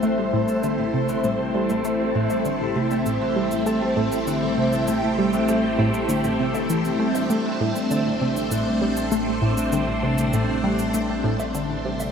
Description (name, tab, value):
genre	ambient, sequencer-driven space music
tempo	99 BPM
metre	4/4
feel	straight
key	A minor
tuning	A4 = 440 Hz
part	phased string machine	sustained chords	0.0-12.1 s	A3 to C5	-24 LUFS	equal	ensemble chorus, phaser
part	Celtic harp	arpeggios	0.0-12.1 s	E3 to A4	-26 LUFS	left 1 dB	auto-pan, low-pass filter, analog delay
part	tight sequenced synth	riff	0.0-12.1 s	A2 to A3	-25 LUFS	right 1 dB	chorus, vintage 12-bit sampler grit, analog delay
part	analog drone	bass	0.0-12.1 s	A1	-37 LUFS	equal	chorus, phaser
part	cabasa and woodblock	percussion	0.0-12.1 s	none	-36 LUFS	right 1 dB	overdrive, analog delay
room	wet shimmer reverb, RT60 9.2 s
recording	none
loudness	-20 LUFS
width	side -7 dB against mid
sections	0.0-12.1 A section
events	fade-in on synth drone 0.0-12.1; fade-in on drum 0.0-12.1; fade-out 10.5-12.1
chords	0.0 Am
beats	| 0.03 0.64 1.24 1.85 | 2.45 3.06 3.67 4.27 | 4.88 5.48 6.09 6.70 | 7.30 7.91 8.52 9.12 | 9.73 10.33 10.94 11.54